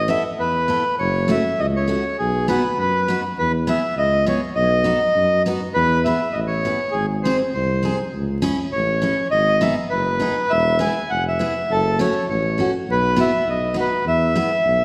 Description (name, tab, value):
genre	alpine folk, alpine dance band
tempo	101 BPM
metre	2/4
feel	straight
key	E major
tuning	A4 = 438 Hz
part	accordion	melody	0.0-14.8 s	G#4 to G#5	-22 LUFS	equal	none
part	mellow tuba	bass	0.0-14.8 s	E1 to F#2	-26 LUFS	equal	none
part	picked steel-string acoustic guitar	accompaniment	0.1-14.5 s	A3 to A4	-27 LUFS	equal	none
room	wet scoring stage reverb, RT60 1.7 s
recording	recorded in a church or concert hall, vinyl crackle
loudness	-20 LUFS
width	mono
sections	0.0-14.8 A section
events	none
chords	0.0 Asus2; 1.0 F#m; 2.2 B; 3.4 E; 4.6 B; 5.8 E; 6.9 G#; 8.1 C#m; 9.3 G#m; 10.5 E; 11.7 F#m; 12.9 Bsus4; 13.5 B; 14.1 E